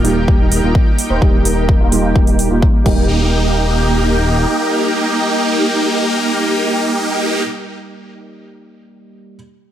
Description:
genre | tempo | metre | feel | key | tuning
EDM, festival progressive house | 128 BPM | 4/4 | straight | Eb major | A4 = 442 Hz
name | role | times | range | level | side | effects
felt-muted upright piano | accompaniment | 0.0-9.4 s | G3 to G4 | -23 LUFS | right 4 dB | sidechain pumping, tape echo
lush unison pad | sustained chords | 0.0-7.4 s | Eb4 to G5 | -23 LUFS | equal | chorus, sidechain pumping
big supersaw lead | riff | 0.0-7.4 s | Bb3 to C5 | -16 LUFS | equal | phaser, sidechain pumping, low-pass filter, tape echo
wide detuned saw bass | bass | 0.0-4.5 s | Eb1 | -18 LUFS | equal | chorus, sidechain pumping
big-room dance drum kit | drums | 0.0-3.0 s | crash cymbal, hi-hat | -24 LUFS | right 1 dB | none
electronic kick drum | drums | 0.3-3.0 s | none | -12 LUFS | equal | none
room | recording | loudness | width
light reverb | none | -12 LUFS | side -11 dB against mid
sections
0.0-3.1 A section; 3.1-6.8 B section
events
filter sweep on supersaw synth 0.0-3.1; filter sweep on detuned saw bass 0.0-3.1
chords
0.0 Eb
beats
0.28 0.75 | 1.22 1.69 2.16 2.62 | 3.09 3.56 4.03 4.50 | 4.97 5.44 5.91 6.38

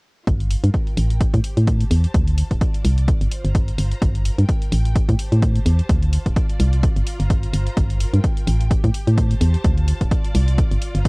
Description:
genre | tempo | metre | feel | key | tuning
piano house | 128 BPM | 4/4 | swing 56% on 16ths | G minor | A4 = 442 Hz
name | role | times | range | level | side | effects
organ-like FM bass | bass | 0.3-11.1 s | D1 to A2 | -17 LUFS | equal | sidechain pumping
electronic hi-hat | drums | 0.3-11.1 s | none | -35 LUFS | left 1 dB | none
electronic kick drum | drums | 0.3-11.1 s | none | -20 LUFS | equal | none
clear symphonic string section | texture | 0.3-11.1 s | F4 to Bb5 | -36 LUFS | equal | sidechain pumping, cassette tape
room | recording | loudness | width
little or no reverb | home recording on cassette | -16 LUFS | side -36 dB against mid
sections
0.3-11.1 A section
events
fade-in on string section 0.3-11.1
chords
0.3 Gm7; 1.2 Am7; 2.1 Dm; 3.1 C7sus4; 4.0 Gm7; 5.0 Am7; 5.9 Dm; 6.8 C7sus4; 7.8 Gm7; 8.7 Am7; 9.6 Dm; 10.6 C7sus4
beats
| 0.27 0.74 1.21 1.68 | 2.14 2.61 3.08 3.55 | 4.02 4.49 4.96 5.42 | 5.89 6.36 6.83 7.30 | 7.77 8.24 8.71 9.18 | 9.64 10.11 10.58 11.05

